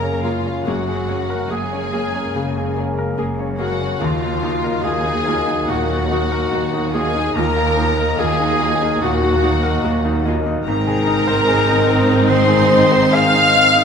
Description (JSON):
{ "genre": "cinematic", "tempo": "72 BPM", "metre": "4/4", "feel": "rubato", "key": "unclear", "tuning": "A4 = 440 Hz", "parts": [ { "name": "warm studio violin section", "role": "melody", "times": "0.0-13.8 s", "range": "F5 to F6", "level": "-24 LUFS", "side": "left 1 dB", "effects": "none" }, { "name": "warm clarinet", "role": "second line", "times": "0.0-13.8 s", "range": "F4 to F5", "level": "-22 LUFS", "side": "left 1 dB", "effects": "none" }, { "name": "warm studio violin section", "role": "second line", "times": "0.0-13.8 s", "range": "F4 to F5", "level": "-22 LUFS", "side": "left 1 dB", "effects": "none" }, { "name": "bright baby grand piano", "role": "accompaniment", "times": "0.0-13.8 s", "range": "Eb2 to C5", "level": "-24 LUFS", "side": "equal", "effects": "none" }, { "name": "mellow French horn section", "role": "sustained chords", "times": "0.0-13.8 s", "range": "Eb3 to C4", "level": "-25 LUFS", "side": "left 2 dB", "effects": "none" }, { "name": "concert harp", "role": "arpeggios", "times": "0.0-13.8 s", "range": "Gb2 to Bb5", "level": "-26 LUFS", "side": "left 9 dB", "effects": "none" }, { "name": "warm studio cello section", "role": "bass", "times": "0.0-13.8 s", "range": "Eb2 to Ab2", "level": "-26 LUFS", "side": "right 3 dB", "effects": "none" }, { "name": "warm studio double bass section", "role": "bass", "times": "0.0-13.8 s", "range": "Gb1 to Eb2", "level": "-25 LUFS", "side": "right 4 dB", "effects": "none" }, { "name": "rich studio viola section", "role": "accompaniment", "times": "0.2-13.8 s", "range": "Bb3 to Ab4", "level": "-25 LUFS", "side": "right 2 dB", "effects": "none" } ], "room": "moderate scoring stage reverb, RT60 1.8 s", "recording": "none", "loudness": "-15 LUFS", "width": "side -6 dB against mid", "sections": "0.0-13.8 A section", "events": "none", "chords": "0.0 Gbadd9; 4.0 Ebmadd9; 10.7 Abadd9", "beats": "| 0.66 1.50 2.34 3.18 | 4.01 4.84 5.69 6.53 | 7.36 8.19 9.02 9.84 | 10.66 11.48 12.29 13.14" }